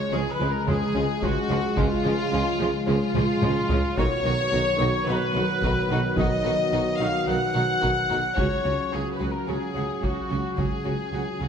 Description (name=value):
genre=cinematic, epic orchestral film score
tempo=109 BPM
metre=4/4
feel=straight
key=unclear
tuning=A4 = 440 Hz
part: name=clear chamber violin section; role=melody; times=0.0-11.5 s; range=F4 to F#5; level=-32 LUFS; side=left 5 dB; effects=none
part: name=mellow French horn section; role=sustained chords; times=0.0-11.5 s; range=Ab3 to Ab4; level=-31 LUFS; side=left 5 dB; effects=none
part: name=warm trombone section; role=sustained chords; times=0.0-11.5 s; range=Db3 to Ab3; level=-32 LUFS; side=right 3 dB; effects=none
part: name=warm trumpet section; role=stabs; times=0.0-11.5 s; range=F4 to F#5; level=-27 LUFS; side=equal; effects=none
part: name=warm symphonic violin section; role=second line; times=0.1-11.5 s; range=Ab3 to F#4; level=-34 LUFS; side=left 3 dB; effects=none
part: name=warm symphonic viola section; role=accompaniment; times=0.1-11.5 s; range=D#3 to F#3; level=-34 LUFS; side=right 1 dB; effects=none
part: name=rich symphonic cello section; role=bass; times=0.1-11.5 s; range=B2 to Db3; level=-34 LUFS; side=right 2 dB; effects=none
part: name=warm symphonic double bass section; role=bass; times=0.1-11.5 s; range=B1 to Db2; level=-32 LUFS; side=right 3 dB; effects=none
part: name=warm tuba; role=bass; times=0.1-11.5 s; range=B1 to Db2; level=-32 LUFS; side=right 3 dB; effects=none
part: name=taiko ensemble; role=drums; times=0.7-11.1 s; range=none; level=-29 LUFS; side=equal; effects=none
room=wet scoring stage reverb, RT60 1.9 s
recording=none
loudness=-22 LUFS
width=side -7 dB against mid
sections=0.0-11.5 A section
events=drum fill 3.1-4.0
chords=0.0 Db; 4.0 B; 8.4 Gbsus2/Db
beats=0.12 0.67 1.22 | 1.77 2.32 2.87 3.42 | 3.97 4.52 5.07 5.62 | 6.17 6.72 7.27 7.83 | 8.38 8.93 9.48 10.03 | 10.58 11.13